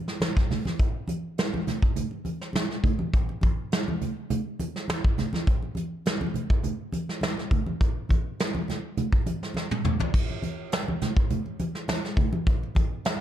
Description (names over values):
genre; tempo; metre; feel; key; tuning
funk; 103 BPM; 4/4; straight; none; none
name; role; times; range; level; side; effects
soft brush drum kit; drums; 0.1-13.2 s; crash cymbal, hi-hat, kick drum, snare drum, toms; -26 LUFS; equal; none
congas; percussion; 0.2-13.2 s; none; -31 LUFS; right 1 dB; none
room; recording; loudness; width
little or no reverb; dark, warm production; -25 LUFS; side -11 dB against mid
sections
0.0-10.1 A section; 10.1-13.2 B section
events
drum fill 9.6-10.1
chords
none